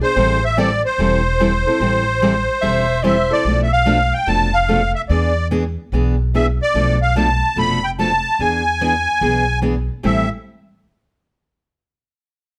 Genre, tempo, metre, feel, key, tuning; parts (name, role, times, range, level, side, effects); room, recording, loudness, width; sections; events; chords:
acoustic string swing (jazz manouche); 146 BPM; 4/4; swing 64% on 8ths; A minor; A4 = 440 Hz
musette accordion; melody; 0.0-10.3 s; C5 to B5; -20 LUFS; equal
picked steel-string acoustic guitar; accompaniment; 0.0-10.3 s; A2 to A4; -23 LUFS; equal
upright bass; bass; 0.2-10.3 s; E1 to E2; -23 LUFS; equal
breathy soprano saxophone; second line; 2.6-3.4 s; C5 to E5; -22 LUFS; equal
light reverb; -17 LUFS; mono
0.0-3.4 A section; 3.4-10.0 B section; 10.0-11.7 C section
0.2 Am7; 3.4 Bm7b5; 5.1 E7; 6.7 Bm7b5; 8.4 E7; 10.0 Am7